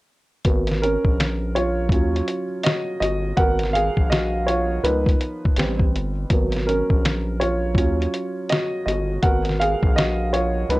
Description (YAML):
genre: lo-fi hip hop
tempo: 82 BPM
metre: 4/4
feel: swing 64% on 16ths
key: G# dorian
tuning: A4 = 440 Hz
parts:
  - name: dark upright piano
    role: accompaniment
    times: 0.4-10.8 s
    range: E#3 to F#5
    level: -22 LUFS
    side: right 1 dB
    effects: cassette tape, low-pass filter
  - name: lo-fi sampler-style drum kit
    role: drums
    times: 0.4-10.8 s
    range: hi-hat, kick drum, snare drum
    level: -21 LUFS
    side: equal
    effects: vintage 12-bit sampler grit
  - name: growling FM bass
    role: bass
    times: 0.5-10.8 s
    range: G1 to D#2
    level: -25 LUFS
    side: equal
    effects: none
room: light reverb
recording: none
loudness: -19 LUFS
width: side -19 dB against mid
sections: 0.4-10.8 A section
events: upright piano solo 0.4-10.8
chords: 0.4 G#m9; 1.9 D#m9; 3.4 G#m9; 4.8 C#13; 5.6 Am9; 6.3 G#m9; 7.8 D#m9; 9.2 G#m9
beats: | 0.45 1.18 1.91 2.64 | 3.37 4.11 4.84 5.57 | 6.30 7.03 7.76 8.49 | 9.23 9.96 10.69